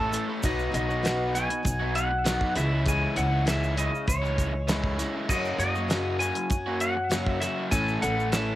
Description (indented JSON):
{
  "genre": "folk rock and heartland rock",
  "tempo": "99 BPM",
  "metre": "4/4",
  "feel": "straight",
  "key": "unclear",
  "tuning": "A4 = 439 Hz",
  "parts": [
    { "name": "picked plugged-in swing-style acoustic guitar", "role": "accompaniment", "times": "0.0-8.6 s", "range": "F#2 to A4", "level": "-32 LUFS", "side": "left 3 dB", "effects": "none" },
    { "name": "crunchy overdriven guitar", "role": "riff", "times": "0.0-8.6 s", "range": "F#2 to A4", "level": "-31 LUFS", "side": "right 1 dB", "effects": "none" },
    { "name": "upright bass", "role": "bass", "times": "0.0-8.6 s", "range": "A1 to F#2", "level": "-30 LUFS", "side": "equal", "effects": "none" },
    { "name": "damped 70s drum kit", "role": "drums", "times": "0.1-8.5 s", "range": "crash cymbal, hi-hat, kick drum, snare drum", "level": "-29 LUFS", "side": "equal", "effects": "cassette tape" },
    { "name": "egg shaker", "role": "percussion", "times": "0.1-8.5 s", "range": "none", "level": "-38 LUFS", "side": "right 4 dB", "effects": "none" },
    { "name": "clean lap steel guitar", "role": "melody", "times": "0.5-8.6 s", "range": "C#5 to G#5", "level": "-30 LUFS", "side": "left 1 dB", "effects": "cassette tape, tape echo" }
  ],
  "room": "light reverb",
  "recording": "home recording on cassette",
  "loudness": "-24 LUFS",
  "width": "side -14 dB against mid",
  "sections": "0.0-8.6 A section",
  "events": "none",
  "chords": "0.4 B; 2.6 C#m; 5.3 F#; 7.7 A",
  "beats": "| 0.43 1.04 1.65 2.25 | 2.86 3.47 4.08 4.68 | 5.29 5.90 6.50 7.11 | 7.72 8.33"
}